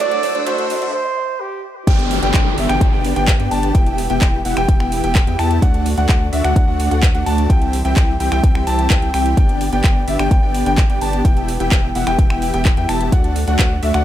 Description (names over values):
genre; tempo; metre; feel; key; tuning
EDM, festival progressive house; 128 BPM; 4/4; straight; unclear; A4 = 440 Hz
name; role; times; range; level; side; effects
trumpet with bucket mute; melody; 0.0-1.6 s; G4 to D5; -21 LUFS; right 5 dB; digital delay
direct-recorded clean electric guitar; accompaniment; 0.0-0.9 s; F#3 to F#4; -29 LUFS; right 3 dB; tremolo, sidechain pumping, digital delay
dark studio string section; sustained chords; 0.0-14.0 s; D3 to E6; -29 LUFS; left 2 dB; none
dense compressed supersaw; riff; 0.0-14.0 s; A3 to A5; -22 LUFS; equal; sidechain pumping, digital delay
saturated sub bass; bass; 0.0-14.0 s; E1 to G2; -21 LUFS; equal; sidechain pumping, high-pass filter
house drum kit; drums; 0.0-14.0 s; crash cymbal, finger snaps, handclaps, hi-hat; -25 LUFS; right 1 dB; small room ambience
riser and downlifter; sound effects; 0.0-5.6 s; none; -26 LUFS; left 1 dB; none
bright grand piano; arpeggios; 1.9-14.0 s; E5 to A5; -22 LUFS; left 1 dB; sidechain pumping, digital delay
electronic kick drum; drums; 1.9-13.7 s; none; -14 LUFS; equal; small room ambience
room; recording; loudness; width
light reverb; high-pass filter; -14 LUFS; side -12 dB against mid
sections
0.0-1.9 A section; 1.9-14.0 B section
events
build-up 0.0-1.9; riser 0.0-0.9; filter sweep on string section 0.0-1.9; filter sweep 0.0-1.9; break 0.9-1.9; drop 1.9-14.0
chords
0.0 C; 1.9 G; 3.7 Em; 5.6 D; 7.5 C; 9.4 G; 11.2 Em; 13.1 D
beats
| 0.00 0.47 0.94 1.40 | 1.87 2.34 2.81 3.28 | 3.75 4.22 4.69 5.15 | 5.62 6.09 6.56 7.03 | 7.50 7.97 8.44 8.90 | 9.37 9.84 10.31 10.78 | 11.25 11.72 12.19 12.65 | 13.12 13.59